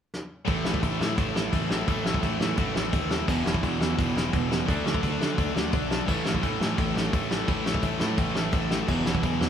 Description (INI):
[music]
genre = punk rock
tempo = 171 BPM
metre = 4/4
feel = straight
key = unclear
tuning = A4 = 440 Hz
[part]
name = soft brush drum kit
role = drums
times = 0.1-9.5 s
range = crash cymbal, kick drum, ride cymbal, snare drum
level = -27 LUFS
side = equal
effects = none
[part]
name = crunchy overdriven guitar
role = riff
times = 0.5-9.5 s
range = E2 to D4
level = -31 LUFS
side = right 6 dB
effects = none
[part]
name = distorted electric guitar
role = riff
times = 0.5-9.5 s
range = E2 to D4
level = -33 LUFS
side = equal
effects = overdrive
[part]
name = tight distorted guitar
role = riff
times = 0.5-9.5 s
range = E2 to D4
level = -31 LUFS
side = left 9 dB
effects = distortion
[part]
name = picked electric bass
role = bass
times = 0.5-9.5 s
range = E1 to D3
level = -33 LUFS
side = equal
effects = none
[sound]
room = light reverb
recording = band playing live in one room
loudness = -24 LUFS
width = side -8 dB against mid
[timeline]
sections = 0.5-9.5 A section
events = drum fill 0.1-0.5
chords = 0.5 A5; 3.3 E5; 4.7 D5; 6.1 A5; 8.9 E5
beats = 0.12 | 0.47 0.82 1.17 1.52 | 1.87 2.22 2.57 2.92 | 3.27 3.62 3.97 4.32 | 4.67 5.02 5.37 5.72 | 6.08 6.42 6.78 7.13 | 7.48 7.83 8.18 8.53 | 8.88 9.23